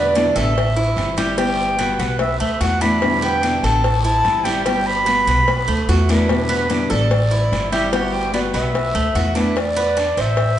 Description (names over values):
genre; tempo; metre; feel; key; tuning
latin, Cuban son and guajira; 147 BPM; 4/4; straight; E minor; A4 = 440 Hz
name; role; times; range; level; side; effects
reedy silver concert flute; melody; 0.0-10.6 s; B4 to B5; -20 LUFS; right 1 dB; none
flamenco guitar; accompaniment; 0.0-9.6 s; B2 to F#4; -23 LUFS; left 2 dB; none
Cuban tres; arpeggios; 0.0-10.6 s; G3 to C5; -24 LUFS; right 3 dB; none
upright bass; bass; 0.0-10.6 s; G1 to E2; -22 LUFS; equal; none
guiro; percussion; 0.1-10.6 s; none; -31 LUFS; right 2 dB; none
cowbell; percussion; 0.2-10.6 s; none; -27 LUFS; left 4 dB; none
room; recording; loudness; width
wet recital hall reverb, RT60 1.5 s; recorded in a church or concert hall, nothing above 10.3 kHz; -16 LUFS; side -11 dB against mid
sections
0.0-9.6 A section; 9.6-10.6 A section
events
none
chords
0.0 Em7; 0.6 Am7; 1.4 Gmaj7; 2.2 B7sus4; 3.0 Em7; 3.8 Am7; 4.7 Gmaj7; 5.5 B7sus4; 6.3 Em7; 7.1 Am7; 7.9 Gmaj7; 8.7 B7sus4; 9.6 E5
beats
0.15 0.56 0.97 | 1.38 1.79 2.20 2.61 | 3.02 3.43 3.84 4.25 | 4.66 5.07 5.48 5.89 | 6.30 6.70 7.11 7.52 | 7.93 8.34 8.75 9.15 | 9.56 9.97 10.38